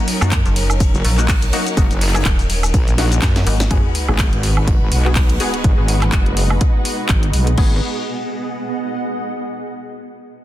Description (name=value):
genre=bass house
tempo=124 BPM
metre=4/4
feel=swing 56% on 16ths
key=G# minor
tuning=A4 = 439 Hz
part: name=dark studio string section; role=sustained chords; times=0.0-7.8 s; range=F#3 to B4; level=-26 LUFS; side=right 1 dB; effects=sidechain pumping
part: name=orchestra-hit-like synth stab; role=stabs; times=0.0-7.8 s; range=A#3 to G#4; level=-26 LUFS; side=left 3 dB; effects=built-in reverb, sidechain pumping, dub echo
part: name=garage drum kit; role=drums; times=0.1-7.7 s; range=crash cymbal, handclaps, hi-hat, shaker, snare drum, woodblock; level=-23 LUFS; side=equal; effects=small room ambience
part: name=soft brush drum kit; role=drums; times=0.1-5.5 s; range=hi-hat, ride cymbal, snare drum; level=-30 LUFS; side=left 4 dB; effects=sidechain pumping on cymbals, high-pass filter on cymbals, small room ambience, sidechain pumping on hats, high-pass filter on hats, high-pass filter on snare, high-pass filter on room
part: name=metallic FM bass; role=bass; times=0.2-3.7 s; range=D#1 to F#2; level=-17 LUFS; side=equal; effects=overdrive, sidechain pumping
part: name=electronic kick drum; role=drums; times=0.3-7.7 s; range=none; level=-16 LUFS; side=equal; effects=small room ambience
part: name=wobble bass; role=bass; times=0.9-7.8 s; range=F#1 to F#2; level=-17 LUFS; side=equal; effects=chorus, sidechain pumping
part: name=sub drop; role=sound effects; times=3.8-5.6 s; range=none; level=-27 LUFS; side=equal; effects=none
part: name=granular cloud pad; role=texture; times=5.3-9.5 s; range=B3 to F#5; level=-25 LUFS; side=right 2 dB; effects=built-in reverb, sidechain pumping
room=small room ambience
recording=dense, heavily limited modern master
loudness=-14 LUFS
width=side -14 dB against mid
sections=0.0-3.7 A section; 3.7-7.6 B section; 7.6-9.5 C section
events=drop 0.0-3.7; drum fill 3.0-3.7; impact 3.7-5.6; filter sweep on wobble bass 3.7-7.6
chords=0.0 F#6; 3.7 G#m7